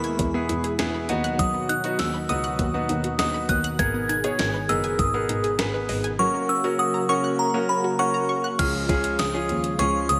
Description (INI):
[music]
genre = synth-pop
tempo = 100 BPM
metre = 4/4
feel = straight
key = unclear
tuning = A4 = 440 Hz
[part]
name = glassy synth bell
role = melody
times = 0.0-10.2 s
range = A#5 to G#6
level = -28 LUFS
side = equal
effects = chorus
[part]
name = bright concert grand piano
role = accompaniment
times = 0.0-10.2 s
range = A#3 to C#5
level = -30 LUFS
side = equal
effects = none
[part]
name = brassy analog pad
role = sustained chords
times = 0.0-10.2 s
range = B2 to G#4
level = -32 LUFS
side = equal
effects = chorus
[part]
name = analog pluck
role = arpeggios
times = 0.0-8.5 s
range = F#3 to G#6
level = -35 LUFS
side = equal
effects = chorus, digital delay
[part]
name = warm double bass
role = bass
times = 0.0-10.2 s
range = F#1 to E2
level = -32 LUFS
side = equal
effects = none
[part]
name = gated 80s digital drum machine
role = drums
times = 0.0-10.2 s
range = crash cymbal, hi-hat, kick drum, snare drum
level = -31 LUFS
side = equal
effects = gated reverb, gated reverb snare, overdrive
[sound]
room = moderate lush hall reverb, RT60 2.8 s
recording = none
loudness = -24 LUFS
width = mono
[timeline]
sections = 0.0-8.6 A section; 8.6-10.2 B section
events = none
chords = 0.0 E; 1.1 B; 3.8 G#madd9; 6.2 F#; 8.6 C#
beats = 0.19 0.79 | 1.39 1.99 2.59 3.19 | 3.79 4.39 4.99 5.59 | 6.19 6.79 7.39 7.99 | 8.59 9.19 9.79